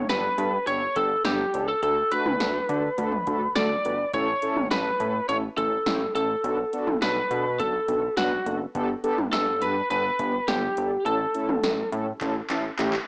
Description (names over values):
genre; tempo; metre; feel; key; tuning
synth-pop; 104 BPM; 4/4; straight; unclear; A4 = 440 Hz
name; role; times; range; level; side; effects
lightly driven lead guitar; melody; 0.0-11.9 s; F#4 to D5; -28 LUFS; equal; cassette tape
chorused synth bass; bass; 0.0-13.0 s; F#1 to D3; -34 LUFS; equal; none
mellow synth brass; accompaniment; 0.1-12.9 s; A3 to B4; -32 LUFS; equal; chorus, cassette tape
electro analog drum machine; drums; 0.1-13.1 s; handclaps, hi-hat, kick drum, snare drum, toms; -33 LUFS; equal; overdrive, cassette tape
room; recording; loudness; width
moderate studio reverb, RT60 0.6 s; home recording on cassette, small speaker sound; -25 LUFS; mono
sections
0.0-13.1 A section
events
drum fill 12.2-13.1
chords
0.0 Gadd9; 1.8 D; 4.1 A; 6.4 Bm7; 8.7 Gadd9; 11.1 A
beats
0.10 0.67 1.25 | 1.83 2.40 2.98 3.56 | 4.13 4.71 5.29 5.86 | 6.44 7.02 7.59 8.17 | 8.75 9.33 9.90 10.48 | 11.06 11.63 12.21 12.79